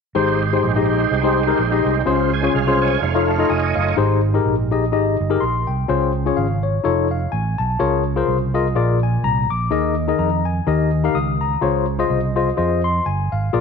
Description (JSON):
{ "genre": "uptempo gospel", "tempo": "126 BPM", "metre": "4/4", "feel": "swing 56% on 8ths", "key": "Ab major", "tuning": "A4 = 440 Hz", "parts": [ { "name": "tine electric piano", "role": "accompaniment", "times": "0.1-13.6 s", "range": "Ab2 to Eb6", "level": "-18 LUFS", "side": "left 5 dB", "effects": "medium stereo tremolo" }, { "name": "overdriven tonewheel organ", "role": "sustained chords", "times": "0.2-4.0 s", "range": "Ab3 to Ab5", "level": "-21 LUFS", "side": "right 10 dB", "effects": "slow rotary speaker, chorus vibrato" }, { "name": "fingered electric bass", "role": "bass", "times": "0.2-13.6 s", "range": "F1 to F2", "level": "-22 LUFS", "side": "right 3 dB", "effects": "none" } ], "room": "wet echo chamber reverb, RT60 1.3 s", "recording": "1960s-style stereo", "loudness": "-16 LUFS", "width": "side -5 dB against mid", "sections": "0.2-4.0 A section; 4.0-13.6 B section", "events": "tonewheel organ fill 2.5-4.0; tine electric piano fill 3.0-4.0", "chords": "0.2 Abmaj7; 2.1 Dbmaj7; 3.0 Faug7; 4.0 Abmaj7; 5.9 Dbmaj7; 6.8 Faug7; 7.8 Bbm7/Db; 8.8 Bb7; 9.7 Ebsus4; 10.7 Eb; 11.6 Dbmaj7", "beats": "| 0.15 0.63 1.11 1.59 | 2.07 2.54 3.02 3.50 | 3.98 4.46 4.93 5.41 | 5.89 6.37 6.84 7.32 | 7.80 8.28 8.76 9.23 | 9.71 10.19 10.67 11.15 | 11.62 12.10 12.58 13.06 | 13.54" }